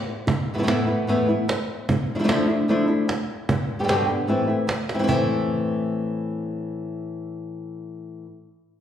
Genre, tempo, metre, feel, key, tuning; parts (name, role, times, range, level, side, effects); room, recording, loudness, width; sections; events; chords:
flamenco; 150 BPM; 4/4; straight; A minor; A4 = 439 Hz
flamenco guitar; melody; 0.3-8.3 s; E2 to G4; -22 LUFS; left 1 dB
cajon; percussion; 0.3-5.2 s; -27 LUFS; right 2 dB
wet recital hall reverb, RT60 1.5 s; recorded in a church or concert hall; -21 LUFS; side -10 dB against mid
0.0-5.1 A section; 5.1-8.3 B section
drum fill 4.9
0.3 Esus4; 1.9 Dmadd9; 3.5 G; 4.3 Am